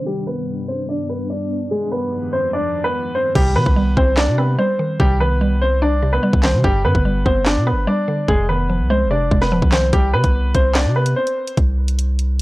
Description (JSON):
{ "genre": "hip hop, drill", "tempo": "146 BPM", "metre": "4/4", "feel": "half-time", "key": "C harmonic minor", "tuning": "A4 = 440 Hz", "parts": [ { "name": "clear concert grand piano", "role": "melody", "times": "0.0-11.6 s", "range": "G3 to D5", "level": "-20 LUFS", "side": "equal", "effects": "low-pass filter" }, { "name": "ethereal airy pad", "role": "sustained chords", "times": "0.0-3.3 s", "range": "F2 to D4", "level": "-27 LUFS", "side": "equal", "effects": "ensemble chorus, built-in reverb" }, { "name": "mallet-like synth pluck", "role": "accompaniment", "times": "3.4-9.9 s", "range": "F2 to D4", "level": "-21 LUFS", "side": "right 1 dB", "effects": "chorus, low-pass filter" }, { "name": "long sustained 808-style bass", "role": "bass", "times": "3.4-12.4 s", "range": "Eb1 to C3", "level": "-18 LUFS", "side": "equal", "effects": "none" }, { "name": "drill drum kit", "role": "drums", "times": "3.4-12.4 s", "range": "crash cymbal, handclaps, hi-hat, kick drum, snare drum", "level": "-18 LUFS", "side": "equal", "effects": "none" } ], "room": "little or no reverb", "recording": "dry, gritty hardware recording, cassette tape, low-pass filter", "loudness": "-15 LUFS", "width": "side -19 dB against mid", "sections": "0.0-3.4 A section; 3.4-12.4 B section", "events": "filter sweep 0.0-3.4; hi-hats muted 3.4-9.9", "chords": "0.1 G; 1.7 Fm7; 3.4 Cmadd9; 6.6 G; 8.3 Fm7; 9.9 N.C.", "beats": "| 0.07 0.48 0.89 1.30 | 1.71 2.12 2.53 2.94 | 3.35 3.77 4.18 4.59 | 5.00 5.41 5.82 6.23 | 6.64 7.05 7.46 7.87 | 8.29 8.70 9.11 9.52 | 9.93 10.34 10.75 11.16 | 11.57 11.98 12.39" }